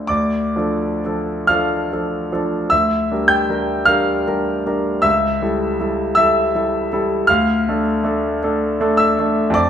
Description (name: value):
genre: classical, romantic nocturne for solo piano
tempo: 42-56 BPM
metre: 4/4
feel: rubato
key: D minor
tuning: A4 = 441 Hz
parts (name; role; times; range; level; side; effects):
- clear concert grand piano; solo; 0.0-9.7 s; C#2 to G6; -15 LUFS; equal; none
room: wet recital hall reverb, RT60 1.4 s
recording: minimal, uncompressed stereo recording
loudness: -16 LUFS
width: side -9 dB against mid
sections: 0.1-9.7 A section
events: none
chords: 0.1 Dm; 2.7 Gm/D; 5.0 A7/C#; 7.3 Dm